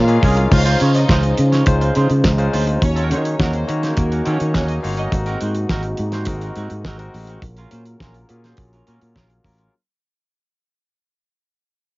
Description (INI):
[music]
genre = disco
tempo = 104 BPM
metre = 4/4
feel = straight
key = unclear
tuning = A4 = 440 Hz
[part]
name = warm studio violin section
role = second line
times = 0.0-5.1 s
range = Bb3 to F5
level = -27 LUFS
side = equal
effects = cassette tape
[part]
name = barky tine electric piano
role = accompaniment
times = 0.0-9.7 s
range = Gb3 to Db5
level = -25 LUFS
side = left 3 dB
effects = medium stereo tremolo, cassette tape
[part]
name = mellow French horn section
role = sustained chords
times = 0.0-9.7 s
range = C3 to C5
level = -27 LUFS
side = right 1 dB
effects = cassette tape
[part]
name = fingered electric bass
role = bass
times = 0.0-9.7 s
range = G1 to Eb3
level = -18 LUFS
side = equal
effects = none
[part]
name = twangy electric guitar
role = accompaniment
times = 0.1-9.7 s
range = C4 to Db5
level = -28 LUFS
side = right 4 dB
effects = cassette tape
[part]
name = damped 70s drum kit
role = drums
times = 0.1-9.7 s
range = crash cymbal, hi-hat, kick drum, snare drum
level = -20 LUFS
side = equal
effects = cassette tape
[sound]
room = little or no reverb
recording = home recording on cassette, nothing above 7.5 kHz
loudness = -15 LUFS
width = side -21 dB against mid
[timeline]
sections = 0.5-9.7 A section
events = fade-out 0.5-9.7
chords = 0.0 Bbm7; 0.5 Dbmaj9; 2.8 Ebm7; 5.1 Ab9; 7.4 Gbmaj7/Bb